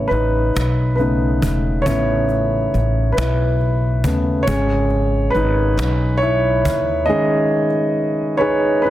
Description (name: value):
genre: six-eight pop ballad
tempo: 46 BPM (dotted quarters)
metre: 6/8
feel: straight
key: unclear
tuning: A4 = 441 Hz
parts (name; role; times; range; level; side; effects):
- warm concert grand piano; accompaniment; 0.0-8.9 s; C#3 to D#5; -17 LUFS; equal; none
- upright bass; bass; 0.0-7.1 s; E1 to D#2; -19 LUFS; equal; none
- cajon; drums; 0.1-6.9 s; none; -26 LUFS; equal; none
room: light reverb, small room ambience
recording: dense, heavily limited modern master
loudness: -15 LUFS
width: side -14 dB against mid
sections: 0.0-8.9 A section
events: grand piano solo 0.0-8.9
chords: 0.0 Aadd9; 4.5 G#sus4